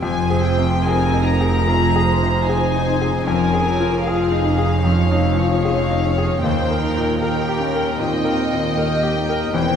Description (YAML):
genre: cinematic, emotional film score for orchestra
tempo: 76 BPM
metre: 4/4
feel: rubato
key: F minor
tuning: A4 = 439 Hz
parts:
  - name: warm symphonic violin section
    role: melody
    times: 0.0-9.8 s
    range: F5 to Bb5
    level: -24 LUFS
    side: left 2 dB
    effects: none
  - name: dark studio violin section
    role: second line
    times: 0.0-9.8 s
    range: Ab4 to Eb5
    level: -25 LUFS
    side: left 1 dB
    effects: none
  - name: bright concert grand piano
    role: accompaniment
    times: 0.0-9.8 s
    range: Eb2 to Bb4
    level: -22 LUFS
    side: left 1 dB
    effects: none
  - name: dark symphonic viola section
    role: accompaniment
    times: 0.0-9.8 s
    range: Bb3 to F4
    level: -27 LUFS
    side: right 1 dB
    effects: none
  - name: concert harp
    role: arpeggios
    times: 0.0-9.8 s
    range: Eb3 to Ab4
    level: -26 LUFS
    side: left 6 dB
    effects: none
  - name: warm symphonic cello section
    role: bass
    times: 0.0-9.8 s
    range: Eb2 to F2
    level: -25 LUFS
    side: right 2 dB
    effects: none
  - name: warm symphonic double bass section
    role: bass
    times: 0.0-9.8 s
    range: E1 to Eb2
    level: -23 LUFS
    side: right 2 dB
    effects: none
room: wet concert hall reverb, RT60 2.2 s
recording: heard from further back in the room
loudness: -16 LUFS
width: side -8 dB against mid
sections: 0.0-9.8 A section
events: none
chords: 0.0 Fm7; 3.3 Dbadd9/F; 6.4 Eb